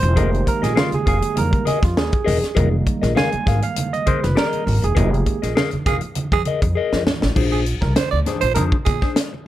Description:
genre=funk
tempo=100 BPM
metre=4/4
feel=straight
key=F dorian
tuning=A4 = 440 Hz
part: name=mellow electric guitar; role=accompaniment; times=0.0-9.4 s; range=D4 to F5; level=-24 LUFS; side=left 7 dB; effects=phaser
part: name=barky tine electric piano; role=stabs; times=0.0-5.7 s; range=Eb3 to Ab5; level=-22 LUFS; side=right 4 dB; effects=overdrive
part: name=upright bass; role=bass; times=0.0-9.0 s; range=E1 to Bb2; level=-21 LUFS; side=equal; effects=none
part: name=tight funk drum kit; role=drums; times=0.0-9.3 s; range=crash cymbal, hi-hat, kick drum, snare drum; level=-21 LUFS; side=equal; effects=none
part: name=congas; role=percussion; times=0.2-9.5 s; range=none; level=-28 LUFS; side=right 2 dB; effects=none
part: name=growling tenor saxophone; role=second line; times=5.9-9.1 s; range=Ab4 to D5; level=-23 LUFS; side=right 9 dB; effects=none
room=light reverb, small room ambience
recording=dark, warm production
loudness=-16 LUFS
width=side -13 dB against mid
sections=0.0-7.4 A section; 7.4-9.5 B section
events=tine electric piano solo 0.0-7.4; band accent 5.0-7.4; drum fill 6.8-7.4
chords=0.0 Fm11; 7.4 Bb9

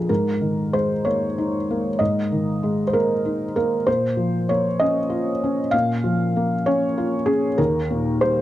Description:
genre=neoclassical minimalist piano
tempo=64 BPM (dotted quarters)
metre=6/8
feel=rubato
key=unclear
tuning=A4 = 440 Hz
part: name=felt-muted upright piano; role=solo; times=0.0-8.4 s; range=Bb1 to F5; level=-19 LUFS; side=equal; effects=none
room=light reverb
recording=dry, close 1970s-style studio recording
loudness=-19 LUFS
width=side -14 dB against mid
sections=0.1-8.4 A section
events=none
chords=0.1 Absus2; 3.9 Bbm; 7.6 Eb

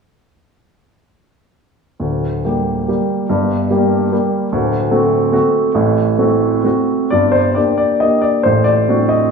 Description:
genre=classical, piano waltz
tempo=121-155 BPM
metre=3/4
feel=rubato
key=G minor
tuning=A4 = 441 Hz
part: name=clear baby grand piano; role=solo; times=2.0-9.3 s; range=D1 to Eb5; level=-13 LUFS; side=equal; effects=none
room=moderate concert hall reverb, RT60 1.9 s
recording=studio ambience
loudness=-13 LUFS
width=side -5 dB against mid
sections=2.0-7.1 A section; 7.1-9.3 B section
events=none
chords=2.0 Gm/D; 4.5 D7; 7.1 Gm; 8.5 D7/A

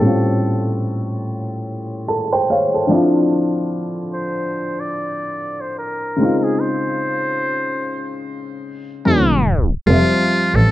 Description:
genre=lo-fi hip hop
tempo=73 BPM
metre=4/4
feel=swing 59% on 16ths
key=unclear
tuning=A4 = 442 Hz
part: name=trumpet with metal mute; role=melody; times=0.0-10.7 s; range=F4 to D5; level=-23 LUFS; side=equal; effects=none
part: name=dark upright piano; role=accompaniment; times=0.0-10.7 s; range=Gb2 to A5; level=-18 LUFS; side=equal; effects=none
part: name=dark double bass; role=bass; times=9.9-10.6 s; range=F1 to A1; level=-14 LUFS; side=right 1 dB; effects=none
room=wet recital hall reverb, RT60 1.8 s, studio ambience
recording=worn, warbling old tape, cassette tape, warbly pitch drift, low-pass filter, tape stop, nothing above 10.3 kHz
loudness=-16 LUFS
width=side -15 dB against mid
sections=0.0-9.9 A section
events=filter sweep 0.0-9.9; upright piano fill 1.7-3.3; tape stop 9.1-9.9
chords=0.0 A7alt; 2.9 Dm7; 6.2 Dbmaj9; 9.1 Gbmaj7; 9.9 Fmaj7(no3)

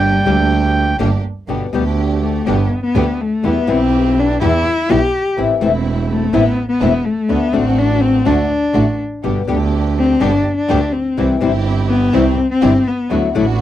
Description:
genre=tango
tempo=124 BPM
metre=4/4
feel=rubato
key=G major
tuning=A4 = 438 Hz
part: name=bandoneon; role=melody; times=0.0-1.0 s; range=G5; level=-17 LUFS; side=right 2 dB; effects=none
part: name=warm cello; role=second line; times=0.0-13.1 s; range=G3 to G4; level=-16 LUFS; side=left 3 dB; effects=none
part: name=rich studio string section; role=stabs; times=0.0-13.6 s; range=A3 to B4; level=-23 LUFS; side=right 6 dB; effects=none
part: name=clear double bass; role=bass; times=0.0-13.6 s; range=E1 to E2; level=-18 LUFS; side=right 3 dB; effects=none
part: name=flamenco guitar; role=accompaniment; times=0.3-13.4 s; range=B2 to G4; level=-17 LUFS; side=left 6 dB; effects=none
room=little or no reverb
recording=dry, close 1970s-style studio recording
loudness=-13 LUFS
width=side -12 dB against mid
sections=0.0-1.5 A section; 1.5-13.6 B section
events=cello solo 1.5-13.6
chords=0.0 Gm; 1.5 G; 3.4 Em; 5.4 Am; 7.3 D; 9.2 G; 11.2 C

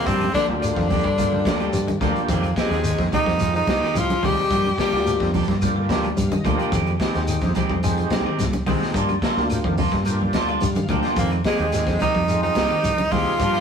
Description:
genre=afrobeat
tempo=108 BPM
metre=4/4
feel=straight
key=F dorian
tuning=A4 = 440 Hz
part: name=edgy tenor saxophone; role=melody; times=0.0-5.3, 11.2-13.6 s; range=Ab3 to G4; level=-22 LUFS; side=equal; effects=none
part: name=breathy baritone saxophone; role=second line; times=0.0-5.3, 11.2-13.6 s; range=Ab2 to G3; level=-31 LUFS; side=left 4 dB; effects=none
part: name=overdriven tonewheel organ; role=accompaniment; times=0.0-13.4 s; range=Ab3 to G5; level=-29 LUFS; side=equal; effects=chorus vibrato, slow rotary speaker
part: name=clean electric guitar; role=arpeggios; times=0.0-13.4 s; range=Bb2 to G3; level=-32 LUFS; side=left 2 dB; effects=none
part: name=electric guitar at the edge of break-up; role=stabs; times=0.1-13.6 s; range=Eb3 to G4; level=-27 LUFS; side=right 2 dB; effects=tape echo
part: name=fingered electric bass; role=bass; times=0.1-13.6 s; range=C2 to G2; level=-25 LUFS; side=equal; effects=none
part: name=crunchy breakbeat drum kit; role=drums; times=0.1-13.6 s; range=hi-hat, kick drum, snare drum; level=-28 LUFS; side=equal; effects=none
part: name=shekere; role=percussion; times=0.1-13.5 s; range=none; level=-31 LUFS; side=left 3 dB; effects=none
part: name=claves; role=percussion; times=0.2-13.6 s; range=none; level=-44 LUFS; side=left 3 dB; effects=none
part: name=congas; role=percussion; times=0.2-13.3 s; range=none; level=-27 LUFS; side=equal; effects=none
room=moderate stone room reverb, RT60 1.2 s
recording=rough rehearsal-room recording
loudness=-18 LUFS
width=side -7 dB against mid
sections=0.0-13.6 A section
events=tonewheel organ fill 5.9-6.7, 10.1-11.2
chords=0.1 Gm7; 2.3 Fm9; 4.5 Gm7; 6.7 Fm9; 9.0 Gm7; 11.2 Fm9

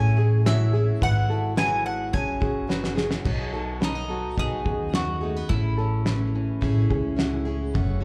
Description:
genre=indie folk with a building arrangement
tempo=107 BPM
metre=4/4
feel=straight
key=B mixolydian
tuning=A4 = 440 Hz
part: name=mandolin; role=melody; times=0.0-7.1 s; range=D#4 to G#5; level=-32 LUFS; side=equal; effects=slapback echo
part: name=clear upright piano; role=accompaniment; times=0.0-3.3 s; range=F#1 to E5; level=-37 LUFS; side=equal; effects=none
part: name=picked plugged-in steel-string acoustic guitar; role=accompaniment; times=0.0-8.0 s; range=F#2 to G#4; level=-34 LUFS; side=equal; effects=none
part: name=upright bass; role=bass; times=0.0-8.0 s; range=F#1 to D#2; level=-27 LUFS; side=equal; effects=none
part: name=ukulele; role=arpeggios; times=0.2-7.7 s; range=F#4 to B4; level=-36 LUFS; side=equal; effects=digital delay
part: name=cloth-damped thuddy drum kit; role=drums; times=0.5-7.9 s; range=crash cymbal, kick drum, snare drum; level=-30 LUFS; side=equal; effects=none
part: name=fingerpicked steel-string acoustic guitar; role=accompaniment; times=3.3-8.0 s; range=F#2 to F#4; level=-35 LUFS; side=equal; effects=none
room=little or no reverb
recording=live gig heard through the venue's PA, club reverb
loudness=-24 LUFS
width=mono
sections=0.0-3.3 A section; 3.3-8.0 B section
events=drum fill 2.7-3.3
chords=0.0 F#m7/A; 1.0 Eadd9/G#; 2.1 F#sus2; 3.3 B; 5.5 Amaj7

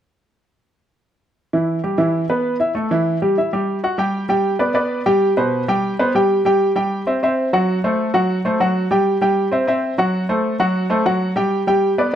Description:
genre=latin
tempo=195 BPM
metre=4/4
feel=straight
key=G major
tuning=A4 = 440 Hz
part: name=clear baby grand piano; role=solo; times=1.5-12.1 s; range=B2 to G5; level=-16 LUFS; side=equal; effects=none
room=moderate large studio reverb, RT60 1.1 s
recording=dark, warm production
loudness=-16 LUFS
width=side -10 dB against mid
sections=1.5-4.0 A section; 4.0-12.2 B section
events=none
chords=1.5 G6; 2.8 Emadd9; 4.0 G; 5.2 C5; 6.4 C; 7.7 F#dim; 8.9 C; 10.1 F#dim; 11.4 G

